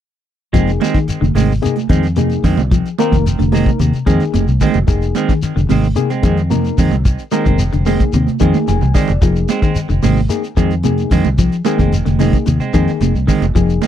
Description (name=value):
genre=afrobeat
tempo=111 BPM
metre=4/4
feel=straight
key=F dorian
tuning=A4 = 437 Hz
part: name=reed electric piano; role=accompaniment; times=0.5-13.9 s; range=Bb3 to Ab5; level=-21 LUFS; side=left 14 dB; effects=spring reverb
part: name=clean electric guitar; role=arpeggios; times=0.5-13.8 s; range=C3 to F3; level=-19 LUFS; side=left 5 dB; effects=wide subtle chorus
part: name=clean electric guitar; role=stabs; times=0.5-13.9 s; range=Eb3 to C4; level=-20 LUFS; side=right 8 dB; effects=tape echo
part: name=fingered electric bass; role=bass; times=0.5-13.8 s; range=F1 to F2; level=-16 LUFS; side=equal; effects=none
part: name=cloth-damped thuddy drum kit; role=drums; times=0.5-13.9 s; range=hi-hat, kick drum, snare drum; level=-16 LUFS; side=equal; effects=none
part: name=shekere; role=percussion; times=0.6-13.9 s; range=none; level=-24 LUFS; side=left 2 dB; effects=none
part: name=congas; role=percussion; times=0.8-13.9 s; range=none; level=-21 LUFS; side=right 19 dB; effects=none
room=little or no reverb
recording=dry, close 1970s-style studio recording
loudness=-12 LUFS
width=side -10 dB against mid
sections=0.5-13.9 A section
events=drum fill 8.4-9.2; reed electric piano fill 8.4-9.2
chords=0.5 Fm7